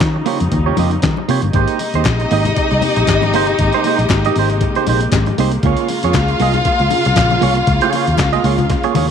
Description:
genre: disco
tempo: 117 BPM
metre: 4/4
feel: swing 56% on 16ths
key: unclear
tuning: A4 = 441 Hz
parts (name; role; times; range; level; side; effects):
- clean electric guitar; accompaniment; 0.0-9.1 s; Bb3 to Eb5; -19 LUFS; right 14 dB; spring reverb
- dark studio string section; sustained chords; 0.0-9.1 s; C3 to G4; -21 LUFS; left 2 dB; stereo widening
- fingered electric bass; bass; 0.0-9.1 s; G1 to Eb3; -17 LUFS; left 1 dB; none
- dusty soul sampler-style drum kit; drums; 0.0-9.1 s; handclaps, hi-hat, kick drum, snare drum, toms; -21 LUFS; left 1 dB; none
- congas; percussion; 0.0-9.1 s; none; -25 LUFS; left 15 dB; none
- warm studio violin section; second line; 1.5-9.1 s; Eb4 to F5; -19 LUFS; left 2 dB; none
- group handclap; percussion; 2.0-8.3 s; none; -27 LUFS; left 17 dB; none
room: small room ambience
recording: 1960s-style stereo with parts hard left and right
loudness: -12 LUFS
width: side -7 dB against mid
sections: 0.0-1.5 A section; 1.5-9.1 B section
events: drum fill 8.7-9.1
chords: 0.0 Eb9; 1.5 Abmaj9; 5.6 Db6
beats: 0.01 0.52 1.03 | 1.55 2.06 2.57 3.08 | 3.59 4.10 4.61 5.12 | 5.64 6.15 6.66 7.17 | 7.68 8.19 8.70

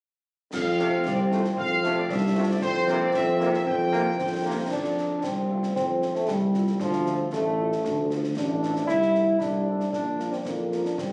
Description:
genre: military-style march for wind band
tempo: 115 BPM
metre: 2/4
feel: straight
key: F major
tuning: A4 = 440 Hz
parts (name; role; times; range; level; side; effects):
- dark trumpet section; melody; 0.5-10.8 s; A4 to G5; -32 LUFS; equal; none
- clear euphonium; second line; 0.5-11.1 s; F3 to E4; -29 LUFS; equal; none
- warm tuba; bass; 0.5-11.1 s; A1 to F2; -29 LUFS; equal; none
- concert snare drum, clash cymbals and concert bass drum; drums; 0.5-11.1 s; none; -39 LUFS; equal; none
- dark French horn section; accompaniment; 0.8-10.8 s; F3 to F4; -39 LUFS; equal; none
- bright trombone section; sustained chords; 0.8-4.5 s; C3 to Bb3; -36 LUFS; equal; none
room: wet recital hall reverb, RT60 1.6 s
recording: recorded on a phone in the room, studio reverb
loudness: -25 LUFS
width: mono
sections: 0.5-4.7 A section; 4.7-11.1 B section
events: none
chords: 0.5 F; 2.6 C7/F; 4.7 F; 6.8 Dm; 8.9 Am/C; 9.9 Bb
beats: | 0.54 1.06 | 1.58 2.10 | 2.62 3.14 | 3.67 4.19 | 4.71 5.23 | 5.75 6.27 | 6.80 7.32 | 7.84 8.36 | 8.89 9.41 | 9.93 10.46 | 10.98

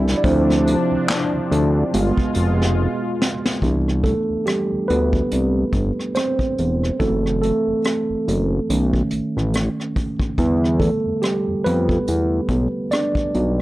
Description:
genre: R&B, neo-soul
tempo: 71 BPM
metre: 4/4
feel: swing 57% on 16ths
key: C major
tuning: A4 = 441 Hz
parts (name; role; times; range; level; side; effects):
- mellow tine electric piano; accompaniment; 0.0-13.6 s; D3 to D5; -21 LUFS; right 2 dB; none
- warm analog pad; sustained chords; 0.0-3.6 s; B2 to F4; -25 LUFS; left 2 dB; chorus
- fat analog bass; bass; 0.0-13.6 s; E1 to F2; -19 LUFS; equal; tube saturation
- vintage brush drum kit; drums; 0.1-13.6 s; handclaps, hi-hat, kick drum, rim click, snare drum; -24 LUFS; equal; none
room: little or no reverb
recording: dry, gritty hardware recording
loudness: -17 LUFS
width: side -17 dB against mid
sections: 0.0-3.6 A section; 3.6-13.6 B section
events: tine electric piano solo 0.0-3.6, 3.6-13.6; drum fill 2.8-3.6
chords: 0.2 Dm7; 1.9 G7b9; 3.6 Cmaj9; 7.0 F#m7b5; 8.7 B7; 10.4 Em7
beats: | 0.24 1.09 1.93 2.78 | 3.62 4.47 5.31 6.16 | 7.00 7.85 8.69 9.54 | 10.38 11.23 12.07 12.92

